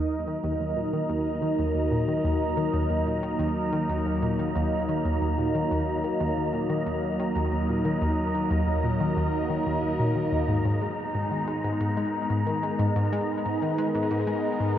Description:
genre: ambient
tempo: 91 BPM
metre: 4/4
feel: straight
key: Eb minor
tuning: A4 = 441 Hz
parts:
  - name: phased analog pad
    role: sustained chords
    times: 0.0-14.8 s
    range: Gb3 to Eb5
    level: -27 LUFS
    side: equal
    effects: phaser, chorus
  - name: wind-like tuned noise texture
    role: texture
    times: 0.7-14.8 s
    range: Bb5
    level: -35 LUFS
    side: equal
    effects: built-in reverb
  - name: analog pluck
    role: riff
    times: 0.3-14.8 s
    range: Eb2 to Ab3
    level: -28 LUFS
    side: equal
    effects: chorus, cassette tape, tape echo
room: wet huge ambient reverb, RT60 7.7 s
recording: worn, warbling old tape, cassette tape, warbly pitch drift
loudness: -24 LUFS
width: side -10 dB against mid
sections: 0.0-14.8 A section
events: none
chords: 0.0 Ebm; 10.5 Abmadd9

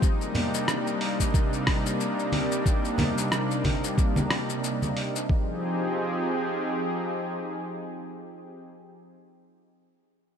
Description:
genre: sunset chillout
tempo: 91 BPM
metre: 4/4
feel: swing 57% on 16ths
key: F dorian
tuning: A4 = 440 Hz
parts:
  - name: lush unison pad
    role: sustained chords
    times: 0.0-8.7 s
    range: C3 to Ab4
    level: -28 LUFS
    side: equal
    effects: chorus, vintage 12-bit sampler grit
  - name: dusty soul sampler-style drum kit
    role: drums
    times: 0.0-5.3 s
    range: hi-hat, rim click, shaker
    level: -31 LUFS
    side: left 1 dB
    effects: overdrive
  - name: electronic kick drum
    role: drums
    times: 0.0-5.4 s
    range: none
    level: -24 LUFS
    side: equal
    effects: overdrive
  - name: congas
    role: percussion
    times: 0.3-4.9 s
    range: none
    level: -30 LUFS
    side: right 1 dB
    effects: none
room: moderate lush hall reverb, RT60 2.8 s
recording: dark, warm production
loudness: -24 LUFS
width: side -8 dB against mid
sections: 0.0-5.3 A section; 5.3-7.9 B section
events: none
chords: 0.0 Cm9; 5.3 Fm7

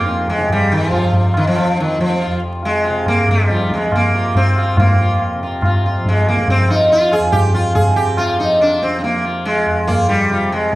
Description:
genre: indian classical, Hindustani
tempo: 141 BPM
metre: 4/4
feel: straight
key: F raga bhimpalasi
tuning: A4 = 440 Hz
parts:
  - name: sitar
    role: melody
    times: 0.0-10.7 s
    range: Eb3 to Ab4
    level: -15 LUFS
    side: equal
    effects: none
  - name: tanpura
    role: drone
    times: 0.0-10.8 s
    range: F2 to F3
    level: -24 LUFS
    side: equal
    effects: none
  - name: tabla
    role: percussion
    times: 0.1-10.8 s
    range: none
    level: -17 LUFS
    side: equal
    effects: none
room: wet large studio reverb, RT60 1.2 s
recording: band playing live in one room, vinyl crackle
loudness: -13 LUFS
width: side -17 dB against mid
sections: 0.0-10.8 A section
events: none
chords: none

